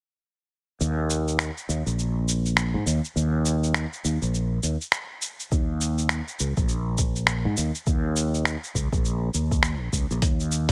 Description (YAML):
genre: organic downtempo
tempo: 102 BPM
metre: 4/4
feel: swing 59% on 16ths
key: unclear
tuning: A4 = 440 Hz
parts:
  - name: fretless electric bass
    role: bass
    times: 0.8-10.7 s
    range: Bb1 to Ab2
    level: -27 LUFS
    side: equal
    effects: lush chorus
  - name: dusty soul sampler-style drum kit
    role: drums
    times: 0.8-10.7 s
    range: cabasa, finger snaps, hi-hat, toms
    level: -28 LUFS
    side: equal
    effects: overdrive
  - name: electronic kick drum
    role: drums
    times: 5.5-10.4 s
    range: none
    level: -27 LUFS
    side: equal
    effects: none
room: digital ambience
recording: none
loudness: -25 LUFS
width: mono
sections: 0.8-10.2 A section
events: none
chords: none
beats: | 0.81 1.40 1.99 2.57 | 3.16 3.75 4.34 4.93 | 5.51 6.10 6.69 7.28 | 7.87 8.46 9.04 9.63 | 10.22